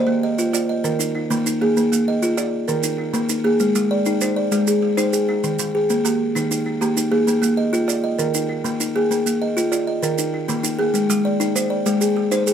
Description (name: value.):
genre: southern african traditional, mbira-style interlocking cycle.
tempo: 131 BPM (dotted quarters).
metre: 12/8.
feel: straight.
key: unclear.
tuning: A4 = 440 Hz.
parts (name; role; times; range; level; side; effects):
buzzing kalimba; arpeggios; 0.0-12.5 s; Eb3 to Eb5; -19 LUFS; left 1 dB; none.
kalimba; arpeggios; 0.0-12.5 s; Eb3 to D5; -24 LUFS; right 5 dB; none.
maracas; percussion; 0.4-12.5 s; none; -27 LUFS; right 7 dB; none.
room: light reverb.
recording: none.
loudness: -18 LUFS.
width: side -8 dB against mid.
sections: 0.0-12.5 A section.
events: none.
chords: 0.0 Bb; 0.8 Eb5; 1.8 Bb; 2.7 Eb5; 3.6 Ab; 5.4 Eb; 7.3 Bb; 8.2 Eb5; 9.1 Bb; 10.0 Eb5; 10.9 Ab.